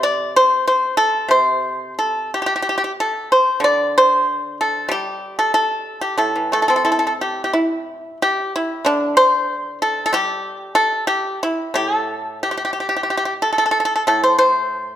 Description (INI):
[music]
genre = chinese traditional, Chinese solo plucked strings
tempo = 87-96 BPM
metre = 2/4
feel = rubato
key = A yu mode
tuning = A4 = 438 Hz
[part]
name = pipa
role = solo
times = 0.0-15.0 s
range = A2 to D5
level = -16 LUFS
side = equal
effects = none
[sound]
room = moderate recital hall reverb, RT60 1.7 s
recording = none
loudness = -16 LUFS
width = side -11 dB against mid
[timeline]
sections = 0.0-7.5 A section; 7.5-15.0 B section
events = none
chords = none